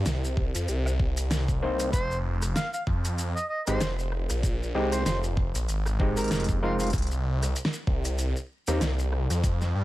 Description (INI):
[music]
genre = glitch hop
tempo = 96 BPM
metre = 4/4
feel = swing 57% on 16ths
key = F minor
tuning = A4 = 439 Hz
[part]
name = phased detuned saw bass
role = bass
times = 0.0-9.8 s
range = F1 to G2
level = -27 LUFS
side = equal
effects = phaser
[part]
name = pop drum kit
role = drums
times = 0.1-9.7 s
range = hi-hat, rim click, snare drum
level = -32 LUFS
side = equal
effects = studio reverb
[part]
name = maracas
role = percussion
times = 0.1-9.7 s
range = none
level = -39 LUFS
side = left 1 dB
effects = none
[part]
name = electronic kick drum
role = drums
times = 0.4-9.6 s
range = none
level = -28 LUFS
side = equal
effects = studio reverb
[part]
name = overdriven clav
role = stabs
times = 1.6-8.8 s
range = Ab3 to C5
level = -30 LUFS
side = equal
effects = sidechain pumping, tape echo
[part]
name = overdriven harmonica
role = melody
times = 1.9-6.9 s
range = F4 to F5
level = -33 LUFS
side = right 1 dB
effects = tape echo
[sound]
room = little or no reverb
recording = vinyl crackle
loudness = -25 LUFS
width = side -16 dB against mid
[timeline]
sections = 0.0-9.8 A section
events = none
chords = 0.0 Cm7; 1.9 Fm7; 6.9 Cm